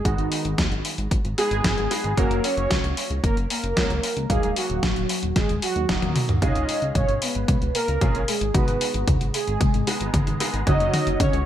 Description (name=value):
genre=italo disco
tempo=113 BPM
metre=4/4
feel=straight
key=F# major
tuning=A4 = 439 Hz
part: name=analog synth brass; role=melody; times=0.0-11.5 s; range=D#3 to D#5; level=-26 LUFS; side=equal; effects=chorus, digital delay
part: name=warm grand piano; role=stabs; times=0.1-11.5 s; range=F#3 to E#5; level=-30 LUFS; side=right 2 dB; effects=ensemble chorus
part: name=chorused synth bass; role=bass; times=0.1-11.4 s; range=D#1 to D#2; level=-27 LUFS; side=equal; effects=none
part: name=clean 12-bit digital drum machine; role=drums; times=0.1-11.4 s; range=hi-hat, snare drum, toms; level=-26 LUFS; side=left 1 dB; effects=gated reverb
part: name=electronic kick drum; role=drums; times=0.1-11.3 s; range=none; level=-24 LUFS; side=equal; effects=none
room=light reverb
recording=bright 1980s-style digital production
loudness=-20 LUFS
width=side -11 dB against mid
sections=0.0-6.4 A section; 6.4-11.5 B section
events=drum fill 6.0-6.4, 6.4-11.5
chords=0.1 G#m; 2.2 F#; 4.3 D#m; 6.4 C#; 8.5 G#m; 10.7 F#5